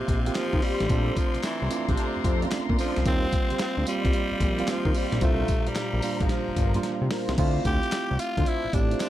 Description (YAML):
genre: R&B, new jack swing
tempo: 111 BPM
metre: 4/4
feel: swing 67% on 16ths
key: D minor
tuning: A4 = 440 Hz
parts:
  - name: raspy tenor saxophone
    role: melody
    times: 0.0-9.1 s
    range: C3 to G4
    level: -31 LUFS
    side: left 2 dB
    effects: none
  - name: tine electric piano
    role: accompaniment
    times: 0.0-9.1 s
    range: Bb2 to G4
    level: -30 LUFS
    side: right 6 dB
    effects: none
  - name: warm studio string section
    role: sustained chords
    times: 0.0-7.4 s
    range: A3 to C6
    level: -36 LUFS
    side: left 4 dB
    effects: none
  - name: fat analog bass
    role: bass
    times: 0.0-9.0 s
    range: G1 to Eb3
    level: -27 LUFS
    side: equal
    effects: none
  - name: dusty soul sampler-style drum kit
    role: drums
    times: 0.1-9.1 s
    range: crash cymbal, handclaps, hi-hat, kick drum, snare drum, tambourine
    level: -27 LUFS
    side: equal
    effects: none
  - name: mellow synth brass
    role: stabs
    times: 0.6-9.1 s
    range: D4 to C5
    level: -35 LUFS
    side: left 2 dB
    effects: chorus
room: digital ambience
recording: none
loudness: -23 LUFS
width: side -13 dB against mid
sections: 0.0-7.4 A section; 7.4-9.1 B section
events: drum fill 6.8-7.4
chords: 0.0 Eb69; 0.9 Bbmaj9; 3.1 Eb69; 5.2 C7sus4; 7.4 Dm7